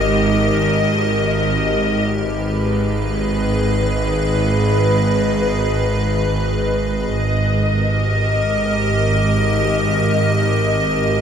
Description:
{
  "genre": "cinematic",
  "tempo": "free time",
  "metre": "none",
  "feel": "none",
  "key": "G# harmonic minor",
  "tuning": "A4 = 441 Hz",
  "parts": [
    { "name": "muted studio violin section", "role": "melody", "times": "0.0-11.2 s", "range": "B4 to D#5", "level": "-22 LUFS", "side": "left 2 dB", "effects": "none" },
    { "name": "icy glass pad", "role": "sustained chords", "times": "0.0-11.2 s", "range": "G4 to D#5", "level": "-22 LUFS", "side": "equal", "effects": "chorus, built-in reverb" },
    { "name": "muted studio cello section", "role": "bass", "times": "0.0-11.2 s", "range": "G#2", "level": "-22 LUFS", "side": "right 2 dB", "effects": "none" },
    { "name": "muted studio double bass section", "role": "bass", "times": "0.0-11.2 s", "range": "G#1", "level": "-25 LUFS", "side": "right 4 dB", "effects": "none" },
    { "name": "bowed-like drone", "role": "drone", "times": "0.0-11.2 s", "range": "G#1", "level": "-21 LUFS", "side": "left 1 dB", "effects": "built-in reverb" }
  ],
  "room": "moderate concert hall reverb, RT60 2.3 s",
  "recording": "none",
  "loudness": "-15 LUFS",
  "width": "side -8 dB against mid",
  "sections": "0.0-11.2 A section",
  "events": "none",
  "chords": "0.0 D#/G#; 2.3 G#m; 7.2 D#/G#"
}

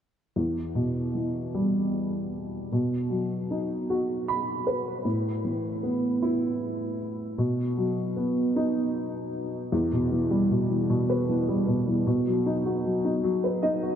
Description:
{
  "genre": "pop",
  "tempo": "51 BPM (dotted quarters)",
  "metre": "6/8",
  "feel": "straight",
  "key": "E harmonic minor",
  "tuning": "A4 = 440 Hz",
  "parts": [
    { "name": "dark upright piano", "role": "accompaniment", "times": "0.4-14.0 s", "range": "E2 to B5", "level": "-24 LUFS", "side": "equal", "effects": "none" }
  ],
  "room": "wet huge ambient reverb, RT60 5.0 s",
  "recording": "dreamy mix soaked in reverb",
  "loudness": "-25 LUFS",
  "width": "side -9 dB against mid",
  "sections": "0.4-9.7 A section; 9.7-14.0 B section",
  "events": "upright piano fill 3.9-5.1, 13.2-14.0",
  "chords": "0.4 Em; 2.7 B; 5.1 Asus2; 7.4 B; 9.7 Em; 12.1 B"
}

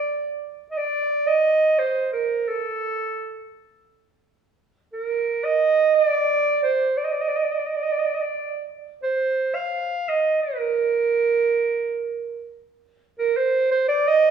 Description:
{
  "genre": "klezmer",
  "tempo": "87 BPM",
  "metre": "3/4",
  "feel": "straight",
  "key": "Bb major",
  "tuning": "A4 = 440 Hz",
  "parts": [
    { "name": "clear clarinet", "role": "solo", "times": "0.0-14.3 s", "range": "A4 to F5", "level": "-20 LUFS", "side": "right 3 dB", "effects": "none" }
  ],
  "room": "wet large studio reverb, RT60 1.4 s",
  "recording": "band playing live in one room",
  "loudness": "-20 LUFS",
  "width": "side -7 dB against mid",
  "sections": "0.0-13.2 A section; 13.2-14.3 B section",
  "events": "none",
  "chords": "none"
}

